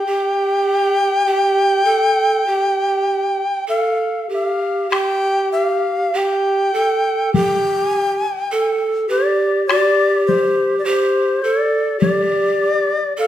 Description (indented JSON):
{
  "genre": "japanese traditional, Japanese chamber music",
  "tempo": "50 BPM",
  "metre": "4/4",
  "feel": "rubato",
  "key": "G suspended pentatonic",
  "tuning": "A4 = 439 Hz",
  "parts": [
    { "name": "bright reedy long shakuhachi", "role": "melody", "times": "0.0-13.3 s", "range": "C5 to G5", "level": "-18 LUFS", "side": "left 2 dB", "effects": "none" },
    { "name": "breathy bright large pan pipes", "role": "second line", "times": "0.0-13.3 s", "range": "G4 to A4", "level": "-18 LUFS", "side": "right 2 dB", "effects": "none" },
    { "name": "taiko ensemble", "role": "percussion", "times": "4.9-12.3 s", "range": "none", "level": "-21 LUFS", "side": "left 4 dB", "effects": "none" }
  ],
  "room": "moderate recital hall reverb, RT60 1.4 s",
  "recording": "recorded in a church or concert hall",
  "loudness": "-15 LUFS",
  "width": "side -12 dB against mid",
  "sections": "0.0-4.9 A section; 4.9-13.3 B section",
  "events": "none",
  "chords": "none"
}